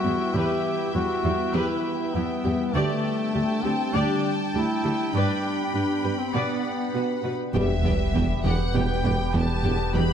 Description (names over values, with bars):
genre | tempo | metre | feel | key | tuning
cinematic, hybrid orchestral and electronic film score | 100 BPM | 4/4 | straight | E minor | A4 = 440 Hz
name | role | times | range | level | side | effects
warm duduk | melody | 0.0-7.2 s | A3 to G4 | -28 LUFS | left 1 dB | none
warm symphonic violin section | second line | 0.0-10.0 s | G4 to B5 | -34 LUFS | left 4 dB | none
evolving wavetable pad | sustained chords | 0.0-10.1 s | G3 to G5 | -30 LUFS | equal | phaser, built-in reverb
thumb-piano-like synth pluck | arpeggios | 0.0-10.1 s | D3 to G4 | -32 LUFS | right 1 dB | chorus, tape echo
warm symphonic viola section | accompaniment | 0.1-10.0 s | G3 to D5 | -32 LUFS | equal | none
warm symphonic cello section | bass | 0.1-10.0 s | D2 to B2 | -29 LUFS | right 2 dB | none
warm symphonic violin section | melody | 7.5-10.1 s | E5 to B5 | -32 LUFS | left 3 dB | none
clear trombone section | sustained chords | 7.5-10.1 s | B2 to G3 | -36 LUFS | right 3 dB | none
mellow tuba | bass | 7.5-10.1 s | E1 | -31 LUFS | right 3 dB | none
sub bass with octave | bass | 7.5-10.1 s | E1 | -28 LUFS | left 1 dB | none
warm studio double bass section | bass | 7.5-10.0 s | E1 | -30 LUFS | right 3 dB | none
sub drop | sound effects | 7.5-9.9 s | none | -30 LUFS | equal | none
mellow French horn section | sustained chords | 7.6-10.1 s | B3 to G4 | -33 LUFS | left 5 dB | none
room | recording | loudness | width
moderate scoring stage reverb, RT60 2.0 s | none | -22 LUFS | side -8 dB against mid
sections
0.0-7.5 A section; 7.5-10.1 B section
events
impact 7.5-9.9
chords
0.0 Em; 2.7 Dsus4; 5.1 G; 6.3 Bm; 7.5 Em